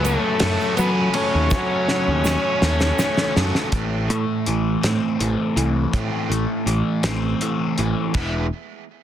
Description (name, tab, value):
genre	indie rock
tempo	54 BPM (dotted quarters)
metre	6/8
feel	straight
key	unclear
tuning	A4 = 439 Hz
part	octave-fuzz lead guitar	melody	0.0-3.3 s	A3 to C#4	-24 LUFS	left 1 dB	distortion, digital delay
part	glockenspiel with soft plastic mallets	second line	0.0-3.3 s	A5 to C#6	-33 LUFS	left 1 dB	none
part	tonewheel organ	sustained chords	0.0-3.7 s	A4 to C#6	-32 LUFS	equal	none
part	overdriven electric guitar	riff	0.0-8.5 s	F#2 to E4	-25 LUFS	left 7 dB	phaser
part	overdriven electric guitar	riff	0.0-8.5 s	E3 to A4	-26 LUFS	right 10 dB	wide subtle chorus, digital delay
part	picked electric bass	bass	0.0-8.5 s	E1 to F#3	-22 LUFS	equal	none
part	cloth-damped thuddy drum kit	drums	0.0-8.3 s	crash cymbal, hi-hat, kick drum, ride cymbal, snare drum	-24 LUFS	equal	none
part	egg shaker	percussion	0.1-3.3 s	none	-34 LUFS	right 21 dB	none
room	little or no reverb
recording	dense, heavily limited modern master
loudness	-18 LUFS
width	side -10 dB against mid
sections	0.0-3.7 A section; 3.7-8.2 B section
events	drum fill 1.5-3.7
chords	0.0 F#m; 3.7 Am; 8.2 E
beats	0.42 | 1.52 2.63 | 3.73 4.84 | 5.95 7.05 | 8.16